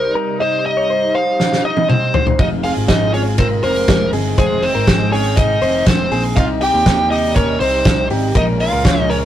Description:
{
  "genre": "jangly indie pop",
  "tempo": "121 BPM",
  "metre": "4/4",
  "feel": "straight",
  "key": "unclear",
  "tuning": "A4 = 445 Hz",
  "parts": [
    { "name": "smooth overdriven lead guitar", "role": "melody", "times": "0.0-9.2 s", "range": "Ab4 to G5", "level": "-19 LUFS", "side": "equal", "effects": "none" },
    { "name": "lush unison pad", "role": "sustained chords", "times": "0.0-9.2 s", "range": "Bb2 to G5", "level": "-26 LUFS", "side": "right 1 dB", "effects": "chorus, phaser" },
    { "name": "direct-recorded clean electric guitar", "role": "arpeggios", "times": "0.0-9.2 s", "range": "Eb4 to Eb5", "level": "-20 LUFS", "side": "left 2 dB", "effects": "none" },
    { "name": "loose indie drum kit", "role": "drums", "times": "1.4-9.2 s", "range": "hi-hat, kick drum, ride cymbal, snare drum, toms", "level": "-17 LUFS", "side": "equal", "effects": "none" },
    { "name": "clear trumpet", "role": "second line", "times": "1.6-9.2 s", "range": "Ab3 to G4", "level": "-29 LUFS", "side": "right 2 dB", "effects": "none" },
    { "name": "fingerpicked steel-string acoustic guitar", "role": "accompaniment", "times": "2.4-9.2 s", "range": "F2 to Ab4", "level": "-23 LUFS", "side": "right 2 dB", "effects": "none" },
    { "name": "picked electric bass", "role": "bass", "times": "2.4-9.2 s", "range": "F1 to Eb2", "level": "-21 LUFS", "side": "equal", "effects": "none" }
  ],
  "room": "light reverb",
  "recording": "rough rehearsal-room recording",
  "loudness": "-13 LUFS",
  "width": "side -11 dB against mid",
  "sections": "0.0-9.2 A section",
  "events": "drum fill 1.4-2.4",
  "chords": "0.0 Cm; 2.4 Fm7; 6.4 Cm; 8.4 Bbm7"
}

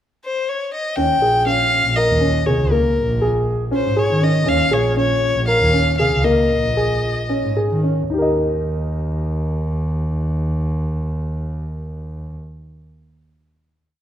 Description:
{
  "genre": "contemporary instrumental, chamber music in an uneven meter",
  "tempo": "219-241 BPM (eighths)",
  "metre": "7/8",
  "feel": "straight",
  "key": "Eb mixolydian",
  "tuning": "A4 = 440 Hz",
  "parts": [
    { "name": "warm violin", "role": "melody", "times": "0.2-7.6 s", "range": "Bb4 to G5", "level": "-20 LUFS", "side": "left 2 dB", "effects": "none" },
    { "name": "dark grand piano", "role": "arpeggios", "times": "1.0-12.4 s", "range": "Bb3 to Eb5", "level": "-20 LUFS", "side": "equal", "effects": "none" },
    { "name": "warm double bass", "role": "bass", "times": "1.0-12.3 s", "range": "Bb1 to Eb3", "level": "-20 LUFS", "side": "right 1 dB", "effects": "none" }
  ],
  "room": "moderate recital hall reverb, RT60 1.9 s",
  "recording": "minimal, uncompressed stereo recording",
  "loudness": "-16 LUFS",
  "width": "side -10 dB against mid",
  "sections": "0.0-1.0 pickup bar; 1.0-8.1 A section; 8.1-11.9 final chord",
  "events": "slowing down 4.5-8.1",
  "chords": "0.0 N.C.; 1.0 Eb9sus4; 8.1 Eb"
}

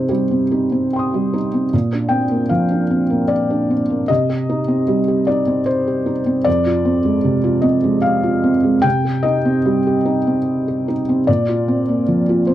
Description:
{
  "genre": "neoclassical minimalist piano",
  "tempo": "75 BPM",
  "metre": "3/4",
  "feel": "rubato",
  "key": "C minor",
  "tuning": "A4 = 440 Hz",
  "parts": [
    { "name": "felt-muted upright piano", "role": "solo", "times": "0.0-12.5 s", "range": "F2 to Eb6", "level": "-15 LUFS", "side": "equal", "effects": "none" }
  ],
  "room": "light reverb",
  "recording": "dry, close 1970s-style studio recording",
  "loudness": "-15 LUFS",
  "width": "side -12 dB against mid",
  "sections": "0.0-12.5 A section",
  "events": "none",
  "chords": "0.0 Cm; 1.7 Bbadd9; 4.1 Cm; 6.5 Fm; 8.8 Cm; 11.3 Bbadd9"
}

